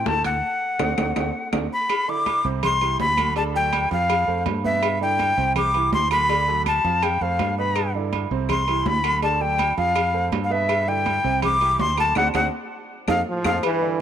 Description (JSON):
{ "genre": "latin, salsa", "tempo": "164 BPM", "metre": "4/4", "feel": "straight", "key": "unclear", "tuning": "A4 = 443 Hz", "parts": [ { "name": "breathy bright jazz flute", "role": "melody", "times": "0.0-13.6 s", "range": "E5 to D6", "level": "-22 LUFS", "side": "left 2 dB", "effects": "none" }, { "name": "clear baby grand piano", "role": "accompaniment", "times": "0.0-14.0 s", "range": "A2 to F5", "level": "-29 LUFS", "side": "right 13 dB", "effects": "none" }, { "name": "fingered electric bass", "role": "bass", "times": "0.0-13.6 s", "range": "C2 to G2", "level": "-27 LUFS", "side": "equal", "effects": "none" }, { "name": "bongos and cowbell", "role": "percussion", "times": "0.1-13.8 s", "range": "none", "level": "-33 LUFS", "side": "left 10 dB", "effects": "none" }, { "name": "congas", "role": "percussion", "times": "0.1-14.0 s", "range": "none", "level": "-31 LUFS", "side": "left 2 dB", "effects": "none" }, { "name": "timbales and agogo bells", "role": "percussion", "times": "0.1-13.8 s", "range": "none", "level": "-29 LUFS", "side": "right 12 dB", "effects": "none" }, { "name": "claves", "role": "percussion", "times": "0.2-13.8 s", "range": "none", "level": "-36 LUFS", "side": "left 13 dB", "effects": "none" }, { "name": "clear trombone section", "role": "melody", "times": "13.3-14.0 s", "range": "G2 to F3", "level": "-24 LUFS", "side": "right 3 dB", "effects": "none" }, { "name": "breathy hollow bansuri", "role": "second line", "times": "13.6-13.9 s", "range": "B4", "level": "-25 LUFS", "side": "left 10 dB", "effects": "none" } ], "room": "moderate plate reverb, RT60 3.1 s", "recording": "1960s-style stereo with parts hard left and right", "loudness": "-19 LUFS", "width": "side -9 dB against mid", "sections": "0.0-1.9 A section; 1.9-13.6 B section", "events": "band accent 0.4-1.9, 12.2-13.6; drum fill 1.0-1.9, 12.2-13.6", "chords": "0.4 D7; 1.9 Cmaj9; 2.6 Cadd9; 3.4 D; 4.1 F; 4.8 G6; 5.6 Cadd9; 6.3 D; 7.0 F; 7.8 G6; 8.5 Cadd9; 9.2 D; 10.0 F; 10.7 G6; 11.4 Cadd9; 12.2 D7; 12.9 F7", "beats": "0.06 | 0.43 0.80 1.16 1.53 | 1.90 2.26 2.63 3.00 | 3.36 3.73 4.10 4.46 | 4.83 5.19 5.56 5.93 | 6.29 6.66 7.02 7.39 | 7.76 8.12 8.49 8.86 | 9.22 9.59 9.96 10.32 | 10.69 11.06 11.43 11.79 | 12.16 12.53 12.90 13.26 | 13.63 14.00" }